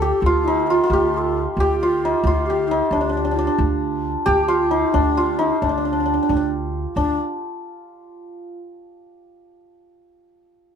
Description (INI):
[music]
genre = Persian modal ensemble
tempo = 89 BPM (dotted quarters)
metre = 6/8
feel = straight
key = D dastgah shur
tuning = A4 = 440 Hz
[part]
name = santur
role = melody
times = 0.0-8.5 s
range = D4 to A4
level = -19 LUFS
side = right 1 dB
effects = none
[part]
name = breathy low ney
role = second line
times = 0.0-7.2 s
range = D4 to A4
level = -25 LUFS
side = left 7 dB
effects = none
[part]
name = upright bass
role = bass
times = 0.0-7.2 s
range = D2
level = -24 LUFS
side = right 1 dB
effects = none
[sound]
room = light reverb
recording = band playing live in one room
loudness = -17 LUFS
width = side -7 dB against mid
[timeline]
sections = 0.0-7.0 A section; 7.0-8.3 B section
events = none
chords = none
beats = | 0.23 0.90 | 1.58 2.25 | 2.92 3.60 | 4.27 4.95 | 5.62 6.29 | 6.97 7.64